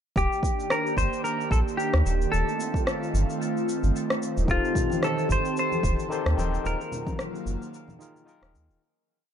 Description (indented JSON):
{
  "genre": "sunset chillout",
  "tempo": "111 BPM",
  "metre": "4/4",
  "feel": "swing 56% on 16ths",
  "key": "Eb lydian",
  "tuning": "A4 = 439 Hz",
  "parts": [
    { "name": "semi-hollow electric guitar", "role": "melody", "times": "0.2-8.2 s", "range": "F4 to C5", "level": "-29 LUFS", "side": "left 1 dB", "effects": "wide subtle chorus, dub echo" },
    { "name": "airy breathy pad", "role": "sustained chords", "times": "0.3-8.8 s", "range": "Eb3 to A4", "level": "-30 LUFS", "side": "right 1 dB", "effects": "chorus, phaser" },
    { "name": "round analog bass", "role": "bass", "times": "0.2-8.8 s", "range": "Eb1 to Eb2", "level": "-25 LUFS", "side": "equal", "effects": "none" },
    { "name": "electronic kick drum", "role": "drums", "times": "0.2-7.2 s", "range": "none", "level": "-28 LUFS", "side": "equal", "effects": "none" },
    { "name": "electronic shaker and rim click", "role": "drums", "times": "0.2-8.8 s", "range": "none", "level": "-32 LUFS", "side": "equal", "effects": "none" },
    { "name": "overdriven tine electric piano", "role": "accompaniment", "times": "4.4-8.8 s", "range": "Eb3 to C5", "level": "-33 LUFS", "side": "moving between left 7 dB and right 5 dB", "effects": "auto-pan, dub echo" },
    { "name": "congas", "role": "percussion", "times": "4.8-8.7 s", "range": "none", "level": "-36 LUFS", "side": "left 3 dB", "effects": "tape echo" }
  ],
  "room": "light reverb, digital ambience",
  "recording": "echo-heavy mix, nothing above 10.4 kHz",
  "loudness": "-24 LUFS",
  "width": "side -9 dB against mid",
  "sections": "0.2-8.8 groove",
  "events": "fade-out 5.9-8.8",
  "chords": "0.2 Ebmaj7; 2.3 F7/Eb; 6.6 Gbmaj7/Eb"
}